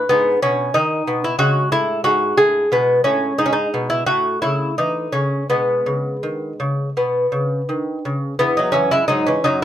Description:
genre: classical, baroque-style dance for lute.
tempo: 81-93 BPM.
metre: 4/4.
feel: rubato.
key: E major.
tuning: A4 = 440 Hz.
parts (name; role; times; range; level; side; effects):
lute; solo; 0.0-9.6 s; E2 to G#4; -16 LUFS; equal; none.
room: light reverb.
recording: none.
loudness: -16 LUFS.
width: side -11 dB against mid.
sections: 0.0-8.4 A section; 8.4-9.6 A section.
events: none.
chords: 0.1 G#m; 1.4 C#5; 2.7 G#m; 4.1 A; 5.5 B69; 7.0 B; 8.4 E.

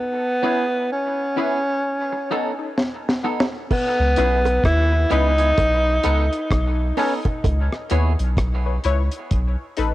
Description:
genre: dub reggae.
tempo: 64 BPM.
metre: 4/4.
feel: swing 60% on 16ths.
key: C# minor.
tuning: A4 = 440 Hz.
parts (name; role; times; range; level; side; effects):
breathy tenor saxophone; melody; 0.0-7.1 s; B3 to E4; -21 LUFS; equal; cassette tape, dub echo.
clean electric guitar; accompaniment; 0.4-8.1 s; B3 to A4; -30 LUFS; right 8 dB; high-pass filter, cassette tape, dub echo.
filtered dub chord stab; stabs; 0.4-9.9 s; B3 to C#5; -29 LUFS; left 7 dB; chorus, high-pass filter, cassette tape, dub echo.
deep reggae drum kit; drums; 2.8-9.9 s; crash cymbal, hi-hat, kick drum, rim click, snare drum; -23 LUFS; equal; cassette tape.
bongos; percussion; 3.7-7.7 s; none; -33 LUFS; right 8 dB; none.
soft dub sub bass; bass; 4.0-9.9 s; A1 to D#2; -20 LUFS; equal; transformer saturation.
room: light reverb, studio ambience.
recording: home recording on cassette.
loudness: -18 LUFS.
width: side -16 dB against mid.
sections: 0.0-3.7 A section; 3.7-9.9 B section.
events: break 0.0-3.7, 7.4-9.9; drum fill 2.8-3.7.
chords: 0.0 C#m7; 1.8 B7; 3.7 C#m7; 5.6 B7; 7.4 C#m7; 9.3 B7.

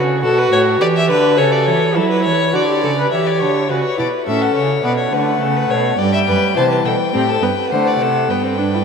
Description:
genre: classical, baroque-style fugue for string quartet.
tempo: 104 BPM.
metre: 3/4.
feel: straight.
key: D major.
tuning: A4 = 440 Hz.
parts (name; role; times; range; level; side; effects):
rich violin; second line; 0.0-8.8 s; G4 to E5; -18 LUFS; left 3 dB; none.
warm viola; accompaniment; 0.0-8.8 s; E3 to B4; -18 LUFS; equal; none.
warm cello; bass; 0.0-8.8 s; F#2 to F#3; -20 LUFS; right 6 dB; none.
rich violin; melody; 3.1-8.8 s; B4 to A5; -20 LUFS; left 8 dB; none.
room: wet cathedral reverb, RT60 6.6 s.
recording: in a vast, echoing space.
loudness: -13 LUFS.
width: side -6 dB against mid.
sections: 0.0-3.1 A section; 3.1-8.8 B section.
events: none.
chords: 0.0 D (rootless); 0.8 Em7; 1.4 A/C#; 2.5 D; 3.1 C#dim; 4.3 F#m/A; 4.8 Bm; 6.0 Em/G (rootless); 6.6 C; 7.7 D7; 8.3 G.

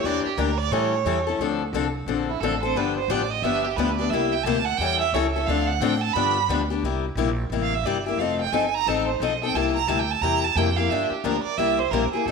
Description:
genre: acoustic string swing (jazz manouche).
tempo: 177 BPM.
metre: 4/4.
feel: swing 62% on 8ths.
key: C mixolydian.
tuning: A4 = 439 Hz.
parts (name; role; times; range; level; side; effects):
bright violin; second line; 0.0-12.3 s; E4 to B5; -25 LUFS; right 10 dB; none.
picked steel-string acoustic guitar; accompaniment; 0.0-12.3 s; C3 to A4; -24 LUFS; left 9 dB; none.
upright bass; bass; 0.0-12.3 s; F1 to A2; -29 LUFS; right 1 dB; none.
room: wet echo chamber reverb, RT60 1.6 s, studio reverb.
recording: 1960s-style stereo with parts hard left and right.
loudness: -21 LUFS.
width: side -4 dB against mid.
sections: 0.0-6.8 A section; 6.8-12.3 A section.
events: violin solo 0.0-12.3.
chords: 0.0 Em7b5; 0.7 A7; 1.4 Dm7; 2.8 G7; 4.1 C7; 4.8 A7; 5.5 Dm7; 6.2 G7; 6.8 C7; 8.2 F7; 9.5 C7; 10.9 Gm7; 11.6 C7.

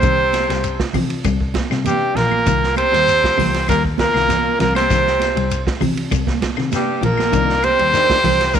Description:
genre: afrobeat.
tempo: 99 BPM.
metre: 4/4.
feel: straight.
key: C minor.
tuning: A4 = 440 Hz.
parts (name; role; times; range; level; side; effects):
clear trumpet; melody; 0.0-8.6 s; G4 to C5; -17 LUFS; right 2 dB; none.
bright baritone saxophone; second line; 0.0-8.6 s; G2 to C3; -26 LUFS; left 14 dB; none.
warm tenor saxophone; second line; 0.0-8.6 s; G3 to C4; -26 LUFS; right 11 dB; none.
semi-hollow electric guitar; arpeggios; 0.0-8.6 s; Eb3 to G3; -27 LUFS; left 13 dB; spring reverb.
muted double bass; bass; 0.0-8.6 s; Bb1 to C3; -22 LUFS; left 1 dB; none.
vintage drum kit; drums; 0.0-8.6 s; hi-hat, kick drum, ride cymbal, snare drum; -24 LUFS; right 2 dB; none.
congas; percussion; 0.0-8.6 s; none; -26 LUFS; right 11 dB; none.
shekere; percussion; 0.0-8.6 s; none; -28 LUFS; left 6 dB; none.
claves; percussion; 0.3-8.6 s; none; -32 LUFS; left 17 dB; none.
tonewheel organ; accompaniment; 7.3-8.6 s; Eb3 to D4; -26 LUFS; left 12 dB; slow rotary speaker, chorus vibrato.
room: light reverb, small room ambience.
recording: 1960s-style stereo with parts hard left and right.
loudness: -14 LUFS.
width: side -8 dB against mid.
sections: 0.0-8.6 A section.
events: none.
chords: 0.0 Cm7.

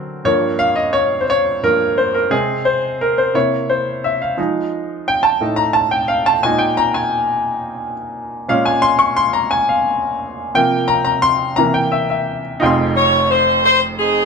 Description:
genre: gospel.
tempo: 58 BPM (dotted quarters).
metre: 6/8.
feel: straight.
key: F minor.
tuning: A4 = 440 Hz.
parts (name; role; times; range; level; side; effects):
clear baby grand piano; accompaniment; 0.0-14.2 s; F1 to Db6; -15 LUFS; equal; none.
mellow saxophone section; melody; 13.0-14.2 s; C4 to Db5; -12 LUFS; left 1 dB; none.
room: moderate large studio reverb, RT60 0.9 s.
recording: none.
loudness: -14 LUFS.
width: side -5 dB against mid.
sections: 0.0-12.6 A section; 12.6-14.2 B section.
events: grand piano solo 0.0-12.6.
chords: 0.3 Gm7b5; 2.3 Abadd9/C; 3.3 C7; 4.4 Fm7; 5.4 F9/A; 6.4 Bb7sus4; 8.5 Bbm7; 10.5 C7sus4; 11.6 C7; 12.6 Fm9.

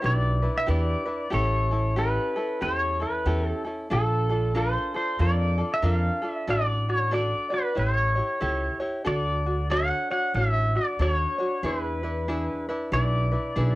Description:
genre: Hawaiian.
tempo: 93 BPM.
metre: 4/4.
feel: swing 62% on 8ths.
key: D major.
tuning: A4 = 435 Hz.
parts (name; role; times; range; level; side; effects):
pedal steel guitar; melody; 0.0-13.8 s; A4 to F#5; -27 LUFS; equal; none.
tenor ukulele; accompaniment; 0.0-13.8 s; C#4 to D5; -30 LUFS; equal; cassette tape.
upright bass; bass; 0.0-13.8 s; A1 to F2; -25 LUFS; equal; tube saturation.
room: little or no reverb.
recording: home recording on cassette.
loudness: -23 LUFS.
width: side -18 dB against mid.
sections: 0.0-13.8 A section.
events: none.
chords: 0.0 Em7; 1.3 A7; 3.9 Bbmaj7; 6.5 D/A; 7.8 A7; 9.1 Dmaj7; 11.6 E7.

